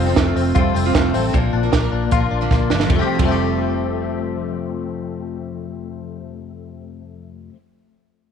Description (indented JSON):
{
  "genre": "jangly indie pop",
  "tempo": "153 BPM",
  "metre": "4/4",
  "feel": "straight",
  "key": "F major",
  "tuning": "A4 = 441 Hz",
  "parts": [
    { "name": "picked steel-string acoustic guitar", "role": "accompaniment", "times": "0.0-7.6 s", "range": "Bb2 to Bb4", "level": "-24 LUFS", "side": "right 14 dB", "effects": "none" },
    { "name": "direct-recorded clean electric guitar", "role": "arpeggios", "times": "0.0-7.6 s", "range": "F2 to G4", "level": "-23 LUFS", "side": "left 11 dB", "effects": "ensemble chorus, tape echo" },
    { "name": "vintage muted fingered electric bass", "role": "bass", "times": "0.0-7.5 s", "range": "F1 to Bb1", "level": "-23 LUFS", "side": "equal", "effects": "none" },
    { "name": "compact cocktail drum kit", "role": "drums", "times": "0.2-3.3 s", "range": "hi-hat, kick drum, ride cymbal, snare drum", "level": "-19 LUFS", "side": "right 2 dB", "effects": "none" }
  ],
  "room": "light reverb",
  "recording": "1960s-style stereo with parts hard left and right",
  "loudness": "-17 LUFS",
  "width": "side -7 dB against mid",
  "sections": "0.0-2.9 A section; 2.9-6.0 B section",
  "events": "drum fill 2.5-2.9",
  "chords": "0.0 Fadd9; 1.3 Bb; 2.9 Fadd9",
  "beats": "0.17 0.56 0.95 | 1.34 1.73 2.12 2.51 | 2.90 3.29 3.69 4.08 | 4.47 4.86 5.25 5.64"
}